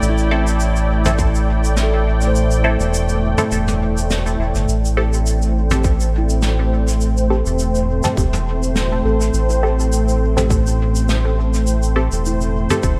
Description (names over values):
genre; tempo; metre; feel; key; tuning
ambient dub; 103 BPM; 4/4; swing 54% on 16ths; A minor; A4 = 438 Hz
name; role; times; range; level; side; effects
warm analog pad; sustained chords; 0.0-13.0 s; A2 to G5; -24 LUFS; equal; chorus
round analog bass; bass; 0.0-13.0 s; E1 to A1; -20 LUFS; equal; none
soft brush drum kit; drums; 0.0-13.0 s; shaker, snare drum, toms; -28 LUFS; equal; dub echo
handpan; arpeggios; 0.1-13.0 s; E4 to C5; -31 LUFS; equal; dub echo
filtered dub chord stab; stabs; 0.3-12.9 s; C4 to A4; -27 LUFS; equal; phaser, dub echo
electronic kick drum; drums; 1.2-1.3, 5.8-13.0 s; none; -21 LUFS; equal; none
room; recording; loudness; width
light reverb, studio reverb; none; -17 LUFS; mono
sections
0.0-13.0 A section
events
kick drops out 2.4-4.7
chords
0.0 C6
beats
| 0.02 0.60 1.19 1.77 | 2.35 2.93 3.52 4.10 | 4.68 5.26 5.84 6.43 | 7.01 7.59 8.18 8.76 | 9.34 9.92 10.51 11.09 | 11.67 12.25 12.84